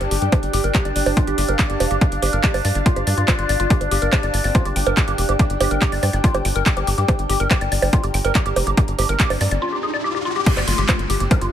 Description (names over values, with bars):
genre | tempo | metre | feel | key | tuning
psychedelic trance | 142 BPM | 4/4 | straight | G minor | A4 = 441 Hz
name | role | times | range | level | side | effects
overtone-sweeping drone | sustained chords | 0.0-11.5 s | D4 | -28 LUFS | equal | chorus, built-in reverb, phaser, sidechain pumping
woody wave-folded pluck | riff | 0.0-11.5 s | F4 to G5 | -25 LUFS | moving between left 8 dB and right 7 dB | chorus, auto-pan, sidechain pumping, tape echo
tight sequencer bass | bass | 0.0-11.5 s | F1 to G2 | -22 LUFS | equal | none
big-room dance drum kit | drums | 0.0-11.5 s | bongos, crash cymbal, handclaps, hi-hat | -24 LUFS | right 3 dB | none
ethereal airy pad | texture | 0.0-11.5 s | G4 to Bb5 | -29 LUFS | left 1 dB | ensemble chorus, built-in reverb, phaser, sidechain pumping
electronic kick drum | drums | 0.3-11.4 s | none | -17 LUFS | equal | none
formant-sweep wobble bass | second line | 4.4-6.3, 11.2-11.4 s | C4 to D4 | -38 LUFS | equal | none
riser and downlifter | sound effects | 8.9-11.5 s | none | -29 LUFS | equal | none
room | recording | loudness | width
little or no reverb | none | -16 LUFS | side -10 dB against mid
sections
0.0-10.5 A section; 10.5-11.5 B section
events
riser 8.9-10.5; break 9.6-10.5; drop 10.5-11.5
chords
0.0 G5